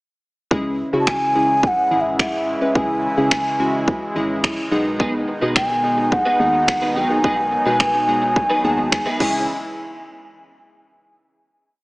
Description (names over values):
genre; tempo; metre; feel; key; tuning
dance-pop; 107 BPM; 4/4; straight; C# minor; A4 = 436 Hz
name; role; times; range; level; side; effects
glassy digital keys; accompaniment; 0.5-9.5 s; G#3 to A5; -24 LUFS; equal; chorus, sidechain pumping
soft supersaw; sustained chords; 0.5-9.5 s; B2 to E4; -27 LUFS; equal; sidechain pumping
organ-like FM bass; bass; 0.5-9.5 s; G#1 to C#3; -26 LUFS; equal; sidechain pumping
house drum kit; drums; 0.5-9.3 s; crash cymbal, finger snaps, kick drum; -22 LUFS; equal; overdrive
mellow hollow bass bansuri; melody; 1.0-9.5 s; E5 to A5; -19 LUFS; equal; digital delay
twelve-string electric guitar; riff; 5.0-9.4 s; B3 to C#5; -26 LUFS; right 1 dB; ensemble chorus, slapback echo
room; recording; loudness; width
moderate lush hall reverb, RT60 2.8 s; big arena sound, small speaker sound; -16 LUFS; side -24 dB against mid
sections
0.5-9.5 verse; 9.5-11.7 final hit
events
synth keys fill 8.4-9.5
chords
0.5 C#m; 4.7 G#m/B; 9.2 C#m; 9.5 N.C.